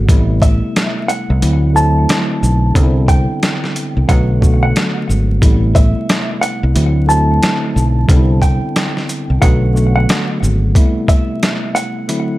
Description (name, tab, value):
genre	hip hop, boom-bap hip-hop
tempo	90 BPM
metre	4/4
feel	swing 62% on 16ths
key	A dorian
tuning	A4 = 436 Hz
part	tine electric piano	accompaniment	0.0-12.4 s	C3 to F#4	-18 LUFS	equal	overdrive, fast stereo tremolo, high-pass filter, low-pass filter
part	fingered electric bass	bass	0.0-10.7 s	G#1 to D2	-13 LUFS	equal	none
part	boom bap sampler-style drum kit	drums	0.1-12.3 s	hi-hat, kick drum, shaker, snare drum	-14 LUFS	equal	none
part	mellow electric guitar	melody	0.4-12.4 s	E5 to A5	-21 LUFS	right 1 dB	high-pass filter, low-pass filter, ping-pong delay
room	little or no reverb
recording	vinyl crackle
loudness	-11 LUFS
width	side -17 dB against mid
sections	0.0-12.4 A section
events	none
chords	0.1 Am7; 1.4 D9; 2.8 Cmaj9; 4.1 Bm7; 5.4 Am7; 6.8 D9; 8.1 Cmaj9; 9.4 Bm7; 10.8 Am7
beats	| 0.09 0.75 1.42 2.09 | 2.75 3.42 4.09 4.75 | 5.42 6.09 6.75 7.42 | 8.09 8.75 9.42 10.09 | 10.75 11.42 12.09